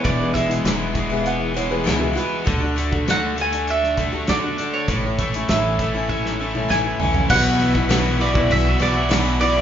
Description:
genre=folk rock and heartland rock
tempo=99 BPM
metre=4/4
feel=straight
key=unclear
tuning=A4 = 440 Hz
part: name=mandolin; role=melody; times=0.0-9.6 s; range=C#5 to G#5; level=-23 LUFS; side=right 2 dB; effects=none
part: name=picked twelve-string acoustic guitar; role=accompaniment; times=0.0-9.6 s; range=E2 to F#4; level=-24 LUFS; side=left 3 dB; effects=none
part: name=biting overdriven guitar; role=riff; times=0.0-9.6 s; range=E2 to F#4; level=-24 LUFS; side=equal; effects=none
part: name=natural country drum kit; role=drums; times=0.0-9.5 s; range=crash cymbal, hi-hat, kick drum, snare drum, toms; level=-24 LUFS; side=equal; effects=none
part: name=upright bass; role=bass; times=0.1-9.6 s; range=E1 to E2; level=-25 LUFS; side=equal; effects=none
part: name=warm upright piano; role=second line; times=1.2-2.9 s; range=F4 to F#5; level=-29 LUFS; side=right 4 dB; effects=none
part: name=tonewheel organ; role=sustained chords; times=7.3-9.6 s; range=F#4 to B5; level=-30 LUFS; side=right 1 dB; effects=slow rotary speaker, overdrive, chorus vibrato
room=moderate large studio reverb, RT60 0.9 s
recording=band playing live in one room, nothing above 7.5 kHz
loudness=-17 LUFS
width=side -9 dB against mid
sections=0.0-7.3 A section; 7.3-9.6 B section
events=drum fill 6.1-7.3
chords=0.0 E; 2.5 D; 4.9 A; 7.3 Bsus4

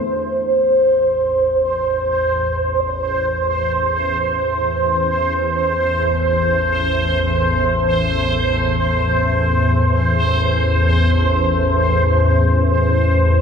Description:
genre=dark ambient drone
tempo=free time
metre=none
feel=none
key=A minor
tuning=A4 = 443 Hz
part: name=organ-like drone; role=drone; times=0.0-13.4 s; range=A1 to E2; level=-18 LUFS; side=left 1 dB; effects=ensemble chorus, built-in reverb
part: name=bubbling stepped-filter texture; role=texture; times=0.0-13.4 s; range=C5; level=-17 LUFS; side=right 1 dB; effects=chorus, built-in reverb
room=wet plate reverb, RT60 3.4 s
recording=none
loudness=-15 LUFS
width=side -6 dB against mid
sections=0.0-13.4 A section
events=fade-in on synth drone 0.0-13.4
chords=0.0 Am

